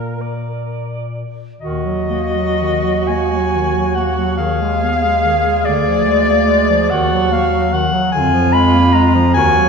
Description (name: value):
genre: classical, lyrical piece for single-reed quartet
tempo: 39-50 BPM (dotted quarters)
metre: 6/8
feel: rubato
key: Eb minor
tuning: A4 = 440 Hz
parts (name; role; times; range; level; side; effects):
- mellow soprano saxophone; melody; 0.0-9.7 s; Bb4 to Cb6; -16 LUFS; left 3 dB; none
- bright alto saxophone; second line; 0.0-9.7 s; F4 to D5; -21 LUFS; right 9 dB; none
- warm clarinet; accompaniment; 0.0-9.7 s; D3 to Cb4; -21 LUFS; left 1 dB; none
- mellow bass clarinet; bass; 0.0-9.7 s; D2 to Bb2; -18 LUFS; equal; none
room: wet concert hall reverb, RT60 2.0 s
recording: heard from further back in the room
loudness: -13 LUFS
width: side -5 dB against mid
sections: 0.0-1.6 A section; 1.6-9.7 B section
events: none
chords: 0.2 Bb; 1.6 Ebm; 4.4 Abm/Eb; 5.7 Bb7/D; 6.9 Ebm; 8.2 Bb7/F